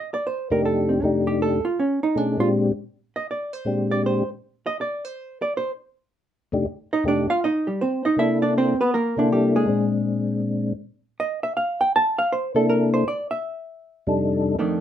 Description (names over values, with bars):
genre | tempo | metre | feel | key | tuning
jazz | 159 BPM | 4/4 | swing 64% on 8ths | F mixolydian | A4 = 439 Hz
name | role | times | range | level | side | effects
hollow-body jazz guitar | accompaniment | 0.0-14.8 s | F2 to A5 | -22 LUFS | right 2 dB | none
percussive tonewheel organ | melody | 0.5-4.2, 6.5-14.6 s | F2 to A4 | -21 LUFS | left 2 dB | slow rotary speaker, chorus vibrato
room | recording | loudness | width
moderate small room ambience, RT60 0.5 s | minimal, uncompressed stereo recording | -20 LUFS | side -10 dB against mid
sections
0.0-14.2 A section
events
hollow-body jazz guitar solo 0.0-14.2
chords
0.0 F13; 2.2 Bb13; 6.7 F7sus2; 8.2 C13; 9.7 Bb9; 11.2 C69; 14.2 F13